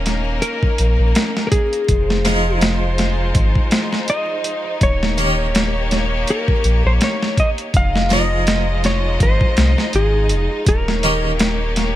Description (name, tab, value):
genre	trip hop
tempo	82 BPM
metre	4/4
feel	swing 56% on 16ths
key	F minor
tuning	A4 = 440 Hz
part	clean lap steel guitar	melody	0.0-12.0 s	Ab4 to F5	-22 LUFS	left 1 dB	tape echo
part	warm symphonic violin section	sustained chords	0.0-12.0 s	Ab3 to Eb5	-25 LUFS	left 1 dB	none
part	soft dub sub bass	bass	0.0-12.0 s	Eb1 to C2	-19 LUFS	equal	none
part	boom bap sampler-style drum kit	drums	0.1-12.0 s	hi-hat, kick drum, snare drum	-17 LUFS	equal	overdrive
part	harpsichord	accompaniment	2.2-11.3 s	Eb3 to Ab4	-23 LUFS	right 1 dB	tremolo, tape echo
room	digital ambience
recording	vinyl crackle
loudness	-15 LUFS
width	side -13 dB against mid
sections	0.0-12.0 A section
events	none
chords	0.0 Eb7(no3); 1.9 Fm7; 4.8 Eb7; 7.7 Fm7; 10.7 Eb7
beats	0.42 1.16 | 1.89 2.62 3.35 4.08 | 4.82 5.55 6.28 7.01 | 7.74 8.47 9.21 9.94 | 10.67 11.40